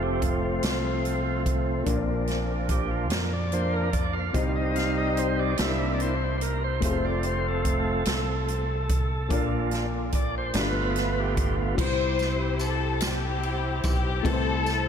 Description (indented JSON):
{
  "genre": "slow gospel",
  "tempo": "48 BPM (dotted quarters)",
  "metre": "6/8",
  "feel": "straight",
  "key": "Bb major, C major from 11.8 s",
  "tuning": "A4 = 439 Hz",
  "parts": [
    { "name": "warm upright piano", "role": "accompaniment", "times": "0.0-14.9 s", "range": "G2 to Eb5", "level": "-34 LUFS", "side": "left 6 dB", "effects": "none" },
    { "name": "bright tonewheel organ", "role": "sustained chords", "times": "0.0-11.8 s", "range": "F3 to F5", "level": "-28 LUFS", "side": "right 1 dB", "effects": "fast rotary speaker, overdrive" },
    { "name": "fingered electric bass", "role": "bass", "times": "0.0-14.9 s", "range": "F1 to F2", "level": "-29 LUFS", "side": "equal", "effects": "none" },
    { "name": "swinging big-band drum kit", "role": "drums", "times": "0.2-14.9 s", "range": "crash cymbal, hi-hat, kick drum, ride cymbal, snare drum", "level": "-30 LUFS", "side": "right 1 dB", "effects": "none" },
    { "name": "muted studio string section", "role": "melody", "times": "11.8-14.9 s", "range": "C4 to C5", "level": "-27 LUFS", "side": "left 4 dB", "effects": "ping-pong delay" },
    { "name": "tambourine", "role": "percussion", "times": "12.2-14.9 s", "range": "none", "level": "-40 LUFS", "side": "right 3 dB", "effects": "none" }
  ],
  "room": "moderate cathedral reverb, RT60 4.6 s",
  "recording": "dreamy mix soaked in reverb",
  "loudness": "-24 LUFS",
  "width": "side -8 dB against mid",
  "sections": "0.0-11.8 A section; 11.8-14.9 B section",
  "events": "tonewheel organ solo 0.0-11.8",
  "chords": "0.0 F; 1.9 Bb; 4.3 Cm; 5.6 C7; 6.8 F; 9.3 Bb; 10.5 G7; 11.8 C; 14.2 Am/C"
}